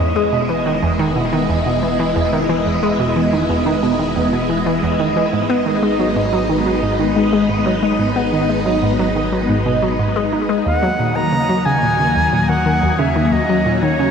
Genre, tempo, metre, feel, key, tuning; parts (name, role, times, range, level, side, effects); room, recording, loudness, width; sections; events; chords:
ambient, sequencer-driven space music; 90 BPM; 4/4; straight; A4 = 440 Hz
phased string machine; sustained chords; 0.0-14.1 s; Eb3 to E4; -20 LUFS; equal; ensemble chorus, phaser
hollow square pluck; riff; 0.0-14.1 s; Eb2 to Eb4; -18 LUFS; equal; chorus, phaser, vintage 12-bit sampler grit, ping-pong delay
fat analog bass; bass; 0.0-14.1 s; E1 to Eb2; -28 LUFS; equal
bubbling stepped-filter texture; texture; 0.0-14.1 s; Eb5 to Eb6; -24 LUFS; right 3 dB; chorus, built-in reverb
bright reedy silver concert flute; melody; 10.7-14.1 s; Db5 to Bb5; -18 LUFS; equal; ping-pong delay
wet shimmer reverb, RT60 6.4 s; -14 LUFS; side -6 dB against mid
0.0-14.1 A section
0.0 E; 5.3 Abm; 10.7 Ebm